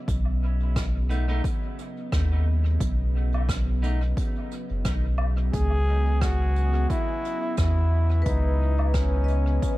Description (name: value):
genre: ambient dub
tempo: 88 BPM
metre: 4/4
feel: swing 56% on 16ths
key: unclear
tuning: A4 = 440 Hz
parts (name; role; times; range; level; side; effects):
- warbly tape-like pad; sustained chords; 0.0-9.8 s; C#3 to D#5; -35 LUFS; right 2 dB; chorus, built-in reverb
- soft dub sub bass; bass; 0.1-9.6 s; F#1 to E2; -22 LUFS; equal; none
- electronic kick drum; drums; 0.1-9.8 s; none; -28 LUFS; equal; none
- soft brush drum kit; drums; 0.1-9.8 s; hi-hat, rim click, woodblock; -38 LUFS; right 1 dB; dub echo
- clean electric guitar; stabs; 1.1-4.0 s; A3 to D#4; -39 LUFS; equal; warbly pitch drift, dub echo
- bright trombone; melody; 5.5-9.8 s; C#4 to G#4; -30 LUFS; equal; dub echo
- vibraphone with medium mallets; arpeggios; 8.2-9.8 s; B4 to D#5; -33 LUFS; left 3 dB; dub echo
room: small room ambience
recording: dark, warm production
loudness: -22 LUFS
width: side -17 dB against mid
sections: 0.0-9.8 A section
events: fade-in on ambient pad 0.0-9.8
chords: 0.1 B; 5.5 C#m7